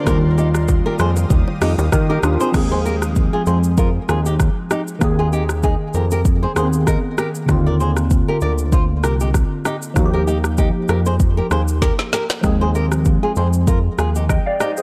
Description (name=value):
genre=afrobeats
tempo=97 BPM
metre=4/4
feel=swing 55% on 16ths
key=Eb major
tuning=A4 = 440 Hz
part: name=glassy digital keys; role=accompaniment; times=0.0-14.8 s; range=D3 to G5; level=-24 LUFS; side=equal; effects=chorus
part: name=granular cloud pad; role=sustained chords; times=0.0-2.5 s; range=G4 to Eb6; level=-35 LUFS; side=equal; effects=built-in reverb
part: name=flamenco guitar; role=riff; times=0.1-14.7 s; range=Eb4 to D5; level=-26 LUFS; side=equal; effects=digital delay
part: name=fat analog bass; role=bass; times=0.1-14.4 s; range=C2 to Eb3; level=-21 LUFS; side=equal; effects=none
part: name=afro-pop drum kit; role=drums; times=0.1-14.8 s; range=crash cymbal, hi-hat, kick drum, rim click, shaker, snare drum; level=-22 LUFS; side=equal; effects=none
part: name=congas and bongos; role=percussion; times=0.1-2.1 s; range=none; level=-31 LUFS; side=equal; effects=none
room=little or no reverb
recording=dark, warm production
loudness=-18 LUFS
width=mono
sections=0.0-2.5 A section; 2.5-14.8 B section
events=drum fill 11.8-12.4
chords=0.1 Ebadd9; 5.0 Abadd9/Eb; 7.5 Bbadd9; 10.0 Ebadd9